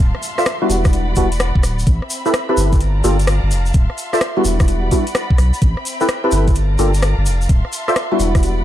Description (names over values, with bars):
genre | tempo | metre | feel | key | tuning
UK garage, two-step garage | 128 BPM | 4/4 | swing 66% on 16ths | A minor | A4 = 442 Hz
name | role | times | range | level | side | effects
warm studio violin section | sustained chords | 0.0-8.6 s | C4 to C6 | -28 LUFS | left 1 dB | sidechain pumping
saturated sub bass | bass | 0.0-8.6 s | D1 to B1 | -17 LUFS | equal | none
downlifter | sound effects | 0.0-1.9 s | none | -41 LUFS | equal | none
garage drum kit | drums | 0.1-8.6 s | hi-hat, rim click | -24 LUFS | left 1 dB | none
tube shaker | percussion | 0.2-8.6 s | none | -29 LUFS | left 2 dB | none
percussive organ stab | stabs | 0.4-8.6 s | G3 to E5 | -19 LUFS | equal | ensemble chorus, dub echo
electronic kick drum | drums | 0.8-8.4 s | none | -14 LUFS | equal | none
room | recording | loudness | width
little or no reverb | dark, warm production | -14 LUFS | side -12 dB against mid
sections
0.0-8.6 A section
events
none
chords
0.0 Dm9; 0.7 Em9; 1.9 Am9; 2.8 Gm9; 3.7 Dm9; 4.4 Em9; 5.6 Am9; 6.6 Gm9; 7.5 Dm9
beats
0.46 0.93 1.40 | 1.87 2.34 2.81 3.27 | 3.74 4.21 4.68 5.15 | 5.62 6.09 6.56 7.03 | 7.49 7.96 8.43